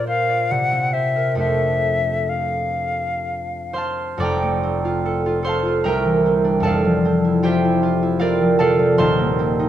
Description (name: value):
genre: classical, impressionist duo for flute and harp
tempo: 58-77 BPM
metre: 3/4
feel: rubato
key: F major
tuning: A4 = 440 Hz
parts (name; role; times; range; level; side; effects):
- silver concert flute; melody; 0.0-3.8 s; E5 to F#5; -21 LUFS; left 3 dB; none
- concert harp; accompaniment; 0.0-9.7 s; Eb1 to D6; -18 LUFS; right 1 dB; none
room: moderate concert hall reverb, RT60 1.8 s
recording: close, detailed microphones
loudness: -17 LUFS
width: side -11 dB against mid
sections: 0.0-4.2 A section; 4.2-9.7 B section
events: none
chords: 0.0 Bbadd9; 0.5 C7#11; 1.4 F6; 5.8 C9; 6.6 Fmaj7; 9.0 Eb6